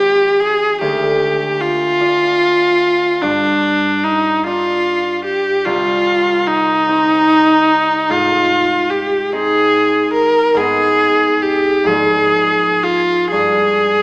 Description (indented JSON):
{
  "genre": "classical, romantic duo for viola and harp",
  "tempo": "40-51 BPM (dotted quarters)",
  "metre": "12/8",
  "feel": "rubato",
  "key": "unclear",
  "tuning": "A4 = 444 Hz",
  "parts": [
    { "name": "rich viola", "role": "melody", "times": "0.0-14.0 s", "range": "D4 to Bb4", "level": "-15 LUFS", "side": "equal", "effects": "none" },
    { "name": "concert harp", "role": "accompaniment", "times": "0.0-14.0 s", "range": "Ab1 to G4", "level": "-23 LUFS", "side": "equal", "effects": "none" }
  ],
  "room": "wet recital hall reverb, RT60 1.7 s",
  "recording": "small speaker sound",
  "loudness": "-15 LUFS",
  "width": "mono",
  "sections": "0.0-14.0 A section",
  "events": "none",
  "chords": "0.0 Abmaj7; 0.8 Dmadd11; 3.2 G5; 5.7 Cm; 8.1 Ab; 10.6 Abm; 11.9 Bb7(no3)/Ab; 13.3 Eb/G (rootless)",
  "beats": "0.81 2.01 | 3.22 4.45 5.66 6.89 | 8.11 9.32 10.57 11.88 | 13.31"
}